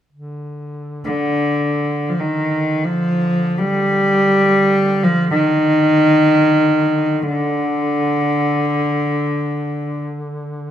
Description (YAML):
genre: caucasian folk, Caucasian lament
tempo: free time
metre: none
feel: none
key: D phrygian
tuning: A4 = 439 Hz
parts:
  - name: warm duduk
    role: drone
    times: 0.1-10.7 s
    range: D3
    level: -26 LUFS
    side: equal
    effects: none
  - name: rich cello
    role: melody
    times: 1.0-10.0 s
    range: D3 to G3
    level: -15 LUFS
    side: equal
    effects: none
room: moderate recital hall reverb, RT60 1.6 s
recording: minimal, uncompressed stereo recording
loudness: -14 LUFS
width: side -10 dB against mid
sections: 0.1-10.7 A section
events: none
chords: none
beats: free time